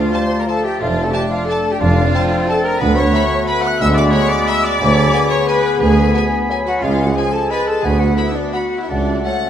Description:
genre	classical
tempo	178 BPM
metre	3/4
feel	uneven beats, rubato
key	unclear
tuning	A4 = 436 Hz
part	concert flute	second line	0.0-9.5 s	C#5 to F#6	-25 LUFS	left 2 dB	none
part	mellow clarinet	second line	0.0-9.5 s	D5 to G#5	-28 LUFS	left 4 dB	none
part	warm oboe	second line	0.0-9.5 s	G#5 to B5	-27 LUFS	right 1 dB	none
part	warm symphonic violin section	second line	0.0-9.5 s	C#5 to F#6	-29 LUFS	left 4 dB	none
part	rich chamber viola section	accompaniment	0.0-9.5 s	C#4 to F#5	-21 LUFS	equal	none
part	warm bassoon	accompaniment	0.0-9.5 s	F3 to D4	-23 LUFS	right 1 dB	none
part	dark French horn section	sustained chords	0.0-9.5 s	G#3 to G#4	-24 LUFS	left 6 dB	none
part	warm chamber cello section	bass	0.0-9.2 s	C#2 to F2	-22 LUFS	right 2 dB	none
part	warm chamber double bass section	bass	0.0-9.2 s	F1 to D2	-21 LUFS	right 1 dB	none
part	warm tuba	bass	0.0-9.2 s	F1 to D2	-24 LUFS	right 3 dB	none
part	rich chamber violin section	melody	0.1-9.5 s	F#5 to B5	-29 LUFS	left 6 dB	none
room	wet scoring stage reverb, RT60 1.9 s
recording	none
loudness	-13 LUFS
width	side -9 dB against mid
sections	0.0-9.5 A section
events	none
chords	0.0 Dm (rootless); 0.8 Dm/F; 2.8 Bm/D; 4.8 G#m7b5/D; 6.8 C#; 7.8 Bm/D; 8.9 F#m/C#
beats	0.14 0.49 | 0.81 1.14 1.49 | 1.81 2.14 2.48 | 2.81 3.14 3.49 | 3.81 4.14 4.49 | 4.82 5.15 5.49 | 5.82 6.15 6.50 | 6.83 7.16 7.51 | 7.84 8.18 8.54 | 8.90 9.27

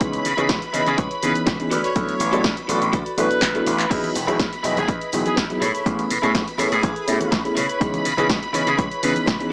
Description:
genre	filtered disco house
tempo	123 BPM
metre	4/4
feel	straight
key	unclear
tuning	A4 = 440 Hz
part	dark baby grand piano	accompaniment	0.0-9.5 s	E3 to A4	-27 LUFS	equal	phaser, vintage 12-bit sampler grit, sidechain pumping
part	string machine, full ensemble	sustained chords	0.0-9.5 s	B5	-31 LUFS	equal	ensemble chorus, sidechain pumping
part	clean electric guitar	riff	0.0-9.5 s	E4 to D#5	-30 LUFS	equal	tremolo, sidechain pumping
part	gritty slap bass	bass	0.0-9.4 s	E1 to C#3	-27 LUFS	equal	overdrive, sidechain pumping
part	electronic kick drum	drums	0.0-9.4 s	none	-26 LUFS	equal	none
part	punchy analog drum machine	drums	0.0-9.5 s	crash cymbal, handclaps, hi-hat, shaker, snare drum	-29 LUFS	equal	overdrive, sidechain pumping on hats, sidechain pumping on perc, sidechain pumping on cymbals
part	clear horn section	melody	0.9-9.2 s	G#4 to C#5	-30 LUFS	equal	sidechain pumping
part	tambourine and congas	percussion	3.9-9.5 s	none	-38 LUFS	equal	sidechain pumping on perc
room	moderate plate reverb, RT60 1.1 s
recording	small speaker sound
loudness	-21 LUFS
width	mono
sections	0.0-9.5 A section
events	drum fill 3.4-3.9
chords	0.0 C#m7; 1.7 D6; 3.9 Emaj7; 5.6 Amaj7; 7.6 C#m7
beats	| 0.01 0.49 0.98 1.47 | 1.96 2.45 2.93 3.42 | 3.91 4.40 4.88 5.37 | 5.86 6.35 6.84 7.32 | 7.81 8.30 8.79 9.28

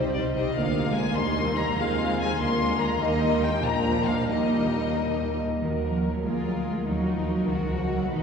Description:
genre	quick classical-period movement for string orchestra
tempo	88-100 BPM (dotted quarters)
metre	6/8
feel	rubato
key	Eb major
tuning	A4 = 442 Hz
part	rich symphonic violin section	melody	0.0-8.2 s	Bb4 to C6	-29 LUFS	left 4 dB	none
part	warm studio violin section	second line	0.0-8.2 s	D4 to C5	-32 LUFS	left 2 dB	none
part	rich studio viola section	accompaniment	0.0-8.2 s	F3 to Bb4	-29 LUFS	right 1 dB	none
part	dark studio double bass section	bass	0.0-8.2 s	Bb1 to Eb2	-31 LUFS	right 2 dB	none
part	warm studio cello section	bass	0.0-8.2 s	Eb2 to Bb3	-30 LUFS	right 1 dB	none
room	wet cathedral reverb, RT60 5.8 s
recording	heard from further back in the room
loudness	-23 LUFS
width	side -6 dB against mid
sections	0.0-5.6 A section; 5.6-8.2 B section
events	none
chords	0.0 Cm; 0.6 Bb/D; 1.2 Eb; 1.8 Fm7/Eb; 2.4 Bb7/D; 3.0 Eb; 3.6 Bb; 4.3 Eb; 5.6 Ebm; 6.3 Bb7/D; 6.9 Ebm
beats	| 0.56 1.17 | 1.78 2.40 | 3.01 3.64 | 4.30 4.97 | 5.62 6.26 | 6.88 7.50 | 8.11

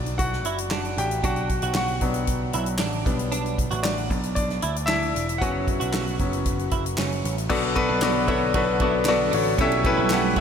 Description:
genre	piano-driven pop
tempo	115 BPM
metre	4/4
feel	straight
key	B minor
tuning	A4 = 441 Hz
part	bright concert grand piano	accompaniment	0.0-10.4 s	B2 to G5	-24 LUFS	left 2 dB	none
part	overdriven picked electric bass	bass	0.0-10.4 s	E1 to D2	-28 LUFS	right 1 dB	none
part	natural country drum kit	drums	0.1-10.4 s	crash cymbal, handclaps, hi-hat, kick drum, ride cymbal, snare drum	-28 LUFS	equal	none
part	direct-recorded clean electric guitar	riff	0.5-10.4 s	B3 to F#4	-32 LUFS	right 6 dB	ensemble chorus
part	lush unison pad	sustained chords	7.5-10.4 s	C#3 to A4	-32 LUFS	right 4 dB	none
room	moderate huge ambient reverb, RT60 5.0 s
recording	dreamy mix soaked in reverb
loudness	-21 LUFS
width	side -7 dB against mid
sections	0.0-7.5 A section; 7.5-10.4 B section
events	grand piano solo 0.0-7.5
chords	0.0 Bm; 3.1 G; 5.4 F#sus4; 7.5 Bm7; 9.6 A7/B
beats	0.20 0.72 | 1.24 1.76 2.28 2.80 | 3.33 3.85 4.37 4.89 | 5.41 5.93 6.46 6.98 | 7.50 8.02 8.54 9.06 | 9.59 10.11

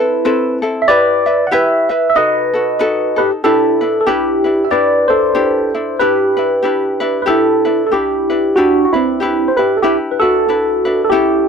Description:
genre	Hawaiian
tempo	94 BPM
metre	4/4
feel	swing 59% on 8ths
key	E minor, G major from 6.0 s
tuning	A4 = 440 Hz
part	bright tine electric piano	melody	0.0-11.5 s	C4 to F#5	-12 LUFS	right 1 dB	phaser
part	ukulele	accompaniment	0.0-11.5 s	C4 to E5	-19 LUFS	left 3 dB	none
room	little or no reverb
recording	dry, close 1970s-style studio recording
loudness	-12 LUFS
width	side -6 dB against mid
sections	0.0-6.0 A section; 6.0-11.5 B section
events	none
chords	0.0 Amadd9; 0.9 Em; 2.2 B7; 3.4 Em7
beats	0.25 | 0.88 1.52 2.16 2.80 | 3.44 4.08 4.72 5.36 | 6.00 6.64 7.28 7.91 | 8.55 9.19 9.83 10.47 | 11.11

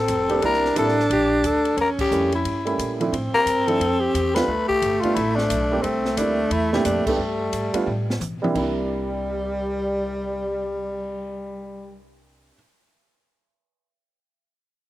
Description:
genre	jazz, small-group swing and bop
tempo	177 BPM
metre	4/4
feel	swing 62% on 8ths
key	C mixolydian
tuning	A4 = 442 Hz
part	growling tenor saxophone	melody	0.0-12.0 s	G3 to B4	-23 LUFS	left 3 dB	slapback echo
part	breathy alto saxophone	second line	0.0-12.0 s	G3 to D4	-25 LUFS	right 2 dB	none
part	upright bass	bass	0.0-12.5 s	F1 to B2	-30 LUFS	equal	none
part	open jazz drum kit	drums	0.1-11.2 s	crash cymbal, cymbal swell, hi-hat, kick drum, ride cymbal, snare drum, toms	-32 LUFS	left 1 dB	none
part	warm baby grand piano	accompaniment	0.3-12.6 s	Bb2 to G4	-26 LUFS	right 3 dB	slapback echo
room	little or no reverb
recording	recorded outdoors, with no room sound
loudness	-20 LUFS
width	side -15 dB against mid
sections	0.0-8.5 A section; 8.5-11.3 B section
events	band accent 1.9, 4.3, 7.0; drum fill 7.9-8.5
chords	0.4 C9; 1.8 A7b9; 3.1 Dm7; 4.5 Gadd9; 5.8 C9; 7.2 Gadd9; 8.5 C9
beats	0.09 | 0.43 0.76 1.10 1.44 | 1.78 2.12 2.46 2.79 | 3.13 3.47 3.81 4.15 | 4.49 4.82 5.16 5.50 | 5.84 6.18 6.51 6.85 | 7.19 7.53 7.87 8.21 | 8.55 8.88 9.22 9.56 | 9.90 10.24 10.58 10.92

